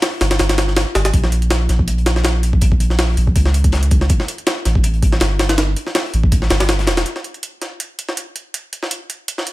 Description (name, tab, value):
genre	drum and bass, jungle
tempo	162 BPM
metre	4/4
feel	swing 54% on 16ths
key	unclear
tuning	A4 = 442 Hz
part	crunchy breakbeat drum kit	drums	0.0-7.1 s	hi-hat, snare drum	-30 LUFS	left 8 dB	high-pass filter on hats, studio reverb, high-pass filter on snare, high-pass filter on room
part	jungle sampler-style drum kit	drums	0.0-9.5 s	hi-hat, kick drum, snare drum	-17 LUFS	equal	overdrive, high-pass filter on hats, studio reverb, high-pass filter on snare, high-pass filter on kick
part	soft dub sub bass	bass	0.2-7.0 s	E1 to Db2	-16 LUFS	equal	none
room	small room ambience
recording	none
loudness	-14 LUFS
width	side -18 dB against mid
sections	0.0-7.1 A section; 7.1-9.5 B section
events	none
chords	none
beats	0.02 0.40 0.77 | 1.14 1.51 1.88 2.25 | 2.62 2.99 3.36 3.73 | 4.10 4.47 4.84 5.21 | 5.58 5.95 6.32 6.69 | 7.06 7.43 7.80 8.17 | 8.54 8.91 9.28